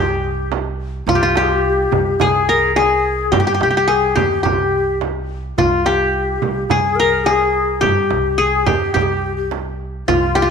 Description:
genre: Turkish makam ensemble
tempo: 107 BPM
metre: 4/4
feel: straight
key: unclear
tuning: A4 = 440 Hz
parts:
  - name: qanun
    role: melody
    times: 0.0-10.5 s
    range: F4 to Bb4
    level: -17 LUFS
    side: left 2 dB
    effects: none
  - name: breathy ney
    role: second line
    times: 0.0-10.5 s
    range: F4 to Bb4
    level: -21 LUFS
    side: left 6 dB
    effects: none
  - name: upright bass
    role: bass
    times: 0.0-10.5 s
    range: C2 to G2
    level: -24 LUFS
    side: right 2 dB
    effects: none
  - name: darbuka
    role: percussion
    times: 0.2-10.5 s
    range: none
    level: -25 LUFS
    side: right 7 dB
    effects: none
  - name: frame drum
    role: percussion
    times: 0.5-10.5 s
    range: none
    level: -24 LUFS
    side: right 11 dB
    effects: none
room: wet echo chamber reverb, RT60 1.6 s, small room ambience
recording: 1960s-style stereo with parts hard left and right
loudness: -14 LUFS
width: side -6 dB against mid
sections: 0.0-10.5 A section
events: none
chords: none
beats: 0.52 | 1.08 1.64 2.20 2.77 | 3.33 3.89 4.45 5.01 | 5.58 6.14 6.70 7.27 | 7.83 8.39 8.95 9.52 | 10.08

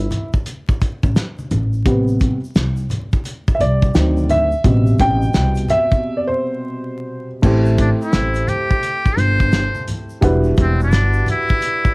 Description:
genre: hip hop, jazz-hop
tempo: 86 BPM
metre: 4/4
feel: swing 64% on 16ths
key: A dorian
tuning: A4 = 440 Hz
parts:
  - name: dark upright piano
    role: accompaniment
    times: 0.0-11.9 s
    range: B2 to G5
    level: -19 LUFS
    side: equal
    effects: none
  - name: upright bass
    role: bass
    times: 0.0-11.2 s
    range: E1 to D2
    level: -17 LUFS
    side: equal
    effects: none
  - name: cloth-damped thuddy drum kit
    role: drums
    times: 0.1-11.9 s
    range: crash cymbal, hi-hat, kick drum, snare drum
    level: -17 LUFS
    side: equal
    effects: cassette tape
  - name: congas and egg shaker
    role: percussion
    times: 0.1-11.9 s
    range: none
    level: -28 LUFS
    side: equal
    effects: none
  - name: trumpet with metal mute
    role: melody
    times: 7.8-11.9 s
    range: C4 to C5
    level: -20 LUFS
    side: equal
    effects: cassette tape
room: small room ambience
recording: home recording on cassette, vinyl crackle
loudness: -14 LUFS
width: side -29 dB against mid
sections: 0.0-7.4 A section; 7.4-11.9 B section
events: upright piano solo 0.0-7.4; break 6.0-7.4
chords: 0.0 N.C.; 1.5 Am7; 3.9 D7b9; 4.6 Am9; 7.4 Am7; 10.2 Em7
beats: 0.46 1.16 | 1.86 2.55 3.25 3.95 | 4.65 5.34 6.04 6.74 | 7.44 8.13 8.83 9.53 | 10.23 10.93 11.62

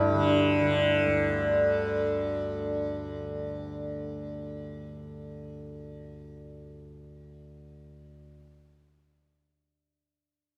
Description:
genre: indian classical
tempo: 125 BPM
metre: 7/4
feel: straight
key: unclear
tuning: A4 = 441 Hz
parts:
  - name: santur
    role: melody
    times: 0.0-1.9 s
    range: D4 to G4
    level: -36 LUFS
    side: equal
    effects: none
  - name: tanpura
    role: drone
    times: 0.0-8.2 s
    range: D2 to D3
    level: -30 LUFS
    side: equal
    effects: none
room: wet studio reverb, RT60 0.7 s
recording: band playing live in one room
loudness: -28 LUFS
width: mono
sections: 0.0-1.2 A section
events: none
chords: none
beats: 0.19 0.67

